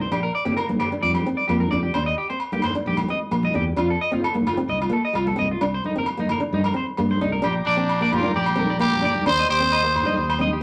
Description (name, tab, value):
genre	highlife guitar band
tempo	131 BPM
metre	4/4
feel	straight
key	Bb major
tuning	A4 = 440 Hz
part	nylon-string guitar	accompaniment	0.0-10.5 s	A3 to D4	-29 LUFS	equal	none
part	electric guitar at the edge of break-up	arpeggios	0.0-10.6 s	Eb4 to Eb5	-28 LUFS	equal	none
part	fingered electric bass	bass	0.0-10.6 s	Bb1 to G2	-28 LUFS	equal	none
part	agogo bells	percussion	0.1-10.4 s	none	-32 LUFS	equal	none
part	congas	percussion	0.5-10.5 s	none	-30 LUFS	equal	none
part	overdriven combo organ	sustained chords	7.4-10.6 s	G5 to Eb6	-35 LUFS	equal	none
part	growling trumpet	melody	7.7-10.4 s	D4 to C5	-24 LUFS	equal	none
room	wet studio reverb, RT60 0.6 s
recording	none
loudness	-22 LUFS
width	mono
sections	0.0-7.4 A section; 7.4-10.6 B section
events	none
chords	0.1 Bb6; 1.9 Eb6; 3.8 F7; 5.6 Cm7; 7.4 Bb6; 9.3 Eb6